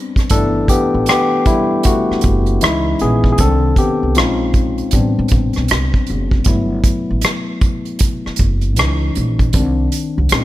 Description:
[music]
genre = R&B, neo-soul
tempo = 78 BPM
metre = 4/4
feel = swing 63% on 16ths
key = unclear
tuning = A4 = 440 Hz
[part]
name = barky tine electric piano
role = accompaniment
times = 0.0-10.4 s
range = Eb3 to A4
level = -17 LUFS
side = left 2 dB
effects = overdrive
[part]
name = unplugged drum kit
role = drums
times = 0.2-10.4 s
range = hi-hat, kick drum, rim click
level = -16 LUFS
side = equal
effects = none
[part]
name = upright bass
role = bass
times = 0.3-10.4 s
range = F#1 to A2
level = -18 LUFS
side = equal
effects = none
[sound]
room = little or no reverb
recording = none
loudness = -13 LUFS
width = side -15 dB against mid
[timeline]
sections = 0.0-10.4 A section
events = tine electric piano solo 0.0-10.4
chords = 0.3 Gmaj13; 2.6 C#madd9; 3.4 Cmadd9; 4.2 Bbm11; 4.9 Am11; 6.5 Gmaj13; 8.8 C#madd9; 9.5 Cmadd9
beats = | 0.31 1.08 1.85 2.62 | 3.38 4.15 4.92 5.69 | 6.46 7.23 8.00 8.77 | 9.54 10.31

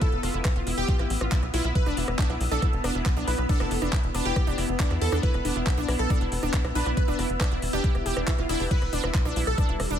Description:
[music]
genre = psychedelic trance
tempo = 138 BPM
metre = 4/4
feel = straight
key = E phrygian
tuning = A4 = 441 Hz
[part]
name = supersaw stab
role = melody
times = 0.0-9.8 s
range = E4 to B4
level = -32 LUFS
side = right 1 dB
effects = phaser, sidechain pumping, digital delay
[part]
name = swarming drone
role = sustained chords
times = 0.0-10.0 s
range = G3 to G4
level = -34 LUFS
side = left 1 dB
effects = built-in reverb, sidechain pumping
[part]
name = wide unison pluck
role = riff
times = 0.0-10.0 s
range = D4 to G4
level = -33 LUFS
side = equal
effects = auto-pan, sidechain pumping, digital delay
[part]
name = electronic kick drum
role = drums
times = 0.0-9.7 s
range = none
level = -24 LUFS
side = equal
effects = none
[part]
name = garage drum kit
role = drums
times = 0.0-10.0 s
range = crash cymbal, handclaps, hi-hat, rim click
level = -33 LUFS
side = equal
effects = none
[part]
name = ethereal airy pad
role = texture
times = 0.0-10.0 s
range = E4 to E6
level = -36 LUFS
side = left 2 dB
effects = ensemble chorus, built-in reverb, sidechain pumping
[part]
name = tight sequencer bass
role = bass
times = 0.1-10.0 s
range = E1 to E2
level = -29 LUFS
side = equal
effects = tube saturation
[part]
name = swell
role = sound effects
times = 8.0-8.7 s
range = none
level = -36 LUFS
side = right 4 dB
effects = none
[sound]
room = little or no reverb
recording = none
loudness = -23 LUFS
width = side -9 dB against mid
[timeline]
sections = 0.0-10.0 A section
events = swell 8.0-8.7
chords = 0.0 E5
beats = | 0.01 0.45 0.88 1.32 | 1.75 2.19 2.62 3.06 | 3.49 3.93 4.36 4.80 | 5.23 5.67 6.10 6.54 | 6.97 7.41 7.84 8.28 | 8.71 9.14 9.58

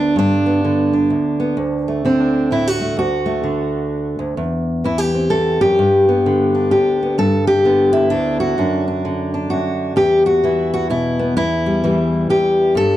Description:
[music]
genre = folk, solo fingerstyle acoustic guitar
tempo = 129 BPM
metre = 3/4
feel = swing 62% on 8ths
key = G major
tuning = A4 = 440 Hz
[part]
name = fingerpicked steel-string acoustic guitar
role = solo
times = 0.0-13.0 s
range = D2 to A4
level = -14 LUFS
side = equal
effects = none
[sound]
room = light reverb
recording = dark, warm production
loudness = -14 LUFS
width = side -13 dB against mid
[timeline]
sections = 0.0-7.2 A section; 7.2-13.0 B section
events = none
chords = 0.0 G; 1.6 D; 4.4 C/E; 5.8 G; 8.6 D/F#; 10.0 Esus2; 11.4 Em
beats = | 0.16 0.63 1.10 | 1.57 2.04 2.50 | 2.97 3.44 3.91 | 4.38 4.84 5.31 | 5.78 6.25 6.71 | 7.18 7.64 8.11 | 8.58 9.04 9.51 | 9.97 10.44 10.90 | 11.37 11.84 12.30 | 12.77

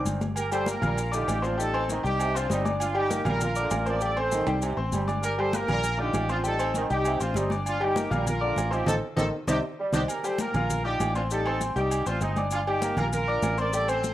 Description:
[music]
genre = latin, salsa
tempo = 197 BPM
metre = 4/4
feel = straight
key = G minor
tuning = A4 = 440 Hz
[part]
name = bright concert grand piano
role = accompaniment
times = 0.0-14.1 s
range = Eb3 to F6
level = -30 LUFS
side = left 3 dB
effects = cassette tape, plate reverb
[part]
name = fingered electric bass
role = bass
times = 0.0-14.1 s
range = G1 to C2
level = -30 LUFS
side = equal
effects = none
[part]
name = agogo bells and timbales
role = percussion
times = 0.1-14.1 s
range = none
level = -34 LUFS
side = right 5 dB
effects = none
[part]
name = congas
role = percussion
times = 0.1-14.1 s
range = none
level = -34 LUFS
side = left 1 dB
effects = none
[part]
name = maracas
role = percussion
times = 0.1-14.1 s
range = none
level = -39 LUFS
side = left 6 dB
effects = none
[part]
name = clear horn section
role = melody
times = 0.4-14.1 s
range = C4 to D5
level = -29 LUFS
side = right 1 dB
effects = none
[part]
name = warm trombone section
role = second line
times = 0.5-9.9 s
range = C3 to G3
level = -34 LUFS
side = right 2 dB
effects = cassette tape
[sound]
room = light reverb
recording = home recording on cassette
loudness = -24 LUFS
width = side -13 dB against mid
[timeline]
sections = 0.4-10.1 A section; 10.1-14.1 A section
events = drum fill 0.0-0.4, 4.5-5.2, 8.9-10.1; band accent 8.9-10.1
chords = 0.4 Gm; 1.0 Bb; 1.6 Am7b5; 2.2 Cmadd9; 2.8 Gm; 3.4 Bb; 4.0 Am7b5; 4.6 Csus2; 5.2 Gm; 5.8 Bb; 6.4 Am7b5; 7.1 Cmadd9; 7.7 Gm; 8.3 Bb; 8.9 Adim; 9.5 Cmadd9; 10.1 Gm; 10.7 Bb; 11.3 Am7b5; 11.9 Cmadd9; 12.5 Gm; 13.1 Bb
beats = 0.06 | 0.37 0.67 0.97 1.28 | 1.58 1.89 2.19 2.49 | 2.80 3.10 3.41 3.71 | 4.01 4.32 4.62 4.93 | 5.23 5.53 5.84 6.14 | 6.45 6.75 7.05 7.36 | 7.66 7.96 8.27 8.57 | 8.88 9.18 9.48 9.79 | 10.09 10.40 10.70 11.00 | 11.31 11.61 11.91 12.22 | 12.52 12.83 13.13 13.44 | 13.74 14.04

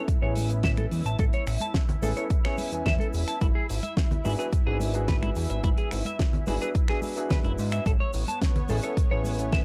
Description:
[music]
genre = nu-disco, nu disco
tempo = 108 BPM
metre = 4/4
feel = straight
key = A major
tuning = A4 = 439 Hz
[part]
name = warm grand piano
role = accompaniment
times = 0.0-9.6 s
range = B3 to G#5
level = -36 LUFS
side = equal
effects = sidechain pumping, low-pass filter, analog delay
[part]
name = lush unison pad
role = sustained chords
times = 0.0-9.6 s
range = B3 to E5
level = -40 LUFS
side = equal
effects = chorus, phaser, sidechain pumping
[part]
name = fat analog bass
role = bass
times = 0.1-9.6 s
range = E1 to G#2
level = -31 LUFS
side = equal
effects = none
[part]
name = damped 70s drum kit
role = drums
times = 0.1-9.6 s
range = finger snaps, hi-hat, snare drum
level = -37 LUFS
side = equal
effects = none
[part]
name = electronic kick drum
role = drums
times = 0.1-9.6 s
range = none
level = -28 LUFS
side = equal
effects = none
[part]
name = tube shaker and congas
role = percussion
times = 0.1-9.6 s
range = none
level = -38 LUFS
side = equal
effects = none
[part]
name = clean electric guitar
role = riff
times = 0.2-9.6 s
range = E4 to A5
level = -36 LUFS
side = equal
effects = analog chorus, low-pass filter
[sound]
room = light reverb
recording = dry, gritty hardware recording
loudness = -26 LUFS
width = mono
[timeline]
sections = 0.0-9.6 A section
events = none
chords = 0.0 Amaj9; 3.4 E7/G#; 7.9 Amaj9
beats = 0.08 0.64 | 1.19 1.75 2.31 2.86 | 3.42 3.97 4.53 5.08 | 5.64 6.19 6.75 7.30 | 7.86 8.42 8.97 9.53

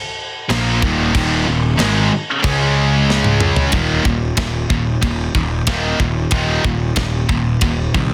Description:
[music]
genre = heavy metal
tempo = 92 BPM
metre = 4/4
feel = straight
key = unclear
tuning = A4 = 441 Hz
[part]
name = high-gain distorted guitar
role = riff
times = 0.5-8.1 s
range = Eb2 to Db4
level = -21 LUFS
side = equal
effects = distortion
[part]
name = thick fuzz guitar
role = riff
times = 0.5-3.7 s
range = Eb2 to Db4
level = -24 LUFS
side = equal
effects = distortion
[part]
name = fuzz picked electric bass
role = bass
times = 0.5-8.1 s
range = Eb1 to Db2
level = -22 LUFS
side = equal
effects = overdrive
[part]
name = tight metal drum kit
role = drums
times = 0.5-8.1 s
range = crash cymbal, kick drum, ride cymbal, snare drum, toms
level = -22 LUFS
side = equal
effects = soft clipping on kick
[sound]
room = little or no reverb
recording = dense, heavily limited modern master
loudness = -17 LUFS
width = mono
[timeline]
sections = 0.0-3.7 A section; 3.7-8.1 B section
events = drum fill 3.1-3.7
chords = 0.0 Eb5; 2.4 Db5; 3.7 Eb5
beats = 0.49 | 1.14 1.79 2.43 3.08 | 3.73 4.38 5.03 5.68 | 6.33 6.97 7.62

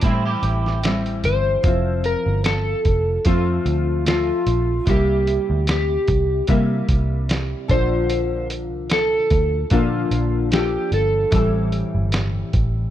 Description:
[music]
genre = indie pop, bedroom pop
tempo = 74 BPM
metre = 4/4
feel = swing 55% on 16ths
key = F major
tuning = A4 = 442 Hz
[part]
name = electric guitar at the edge of break-up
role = second line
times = 0.0-1.4 s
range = C4 to G4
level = -27 LUFS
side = right 5 dB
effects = ensemble chorus, slapback echo
[part]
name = chorused retro synth keys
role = accompaniment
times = 0.0-1.7 s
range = G3 to A4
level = -41 LUFS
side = right 4 dB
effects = none
[part]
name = nylon-string guitar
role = accompaniment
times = 0.0-12.9 s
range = A2 to A4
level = -25 LUFS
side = left 2 dB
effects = analog chorus, vibrato effect
[part]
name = vintage muted picked electric bass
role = bass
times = 0.0-12.9 s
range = F1 to C3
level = -22 LUFS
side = equal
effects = none
[part]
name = lo-fi sampler-style drum kit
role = drums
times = 0.0-12.7 s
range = hi-hat, kick drum, snare drum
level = -22 LUFS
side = equal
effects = none
[part]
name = electric slide guitar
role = melody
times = 1.2-11.7 s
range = F4 to C5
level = -21 LUFS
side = equal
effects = analog chorus, slapback echo
[sound]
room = little or no reverb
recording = dry, close 1970s-style studio recording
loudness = -17 LUFS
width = side -12 dB against mid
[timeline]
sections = 0.0-1.6 A section; 1.6-12.9 B section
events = none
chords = 0.0 Am7; 1.6 Fmaj7; 4.9 C7; 7.7 Bbmaj7; 11.3 Am7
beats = 0.03 0.83 | 1.64 2.45 3.26 4.06 | 4.87 5.68 6.49 7.29 | 8.10 8.91 9.71 10.52 | 11.33 12.13

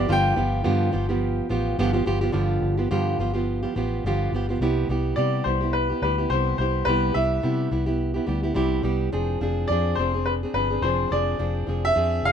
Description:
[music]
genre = acoustic pop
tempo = 106 BPM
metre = 4/4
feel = swing 55% on 16ths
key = C major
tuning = A4 = 438 Hz
[part]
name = bright upright piano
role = melody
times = 0.0-1.8, 5.2-12.3 s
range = B4 to G5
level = -25 LUFS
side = left 2 dB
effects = none
[part]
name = fingerpicked plugged-in steel-string acoustic guitar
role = accompaniment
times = 0.0-12.3 s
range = G2 to Ab4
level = -25 LUFS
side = right 2 dB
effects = none
[part]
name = vintage muted fingered electric bass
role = bass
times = 0.0-12.3 s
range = F1 to C3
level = -26 LUFS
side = left 1 dB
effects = none
[sound]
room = little or no reverb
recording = minimal, uncompressed stereo recording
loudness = -21 LUFS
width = side -8 dB against mid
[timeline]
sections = 0.0-2.3 A section; 2.3-4.6 B section; 4.6-12.3 C section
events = none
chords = 0.0 G7; 4.6 Cmaj7; 9.1 Fm6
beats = | 0.09 0.65 1.22 1.78 | 2.34 2.91 3.47 4.04 | 4.60 5.17 5.73 6.30 | 6.87 7.43 8.00 8.56 | 9.13 9.69 10.26 10.82 | 11.39 11.96

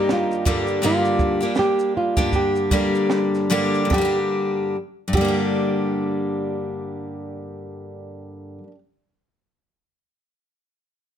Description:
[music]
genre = acoustic pop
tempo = 73-84 BPM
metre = 4/4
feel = swing 60% on 16ths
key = G minor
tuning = A4 = 440 Hz
[part]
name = nylon-string guitar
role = melody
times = 0.0-8.2 s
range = F4 to G4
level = -24 LUFS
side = right 2 dB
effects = none
[part]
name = picked steel-string acoustic guitar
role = accompaniment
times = 0.0-8.8 s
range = G2 to G4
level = -21 LUFS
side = left 1 dB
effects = none
[part]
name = compact cocktail drum kit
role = drums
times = 0.1-5.4 s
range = crash cymbal, kick drum, shaker, snare drum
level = -25 LUFS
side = right 2 dB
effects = none
[sound]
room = light reverb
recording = none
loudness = -19 LUFS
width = side -9 dB against mid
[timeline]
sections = 0.0-3.9 A section; 3.9-7.2 B section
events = slowing down 0.0-3.9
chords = 0.5 Gm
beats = 0.10 | 0.82 1.56 2.32 3.10 | 3.90 4.72 5.54 6.36

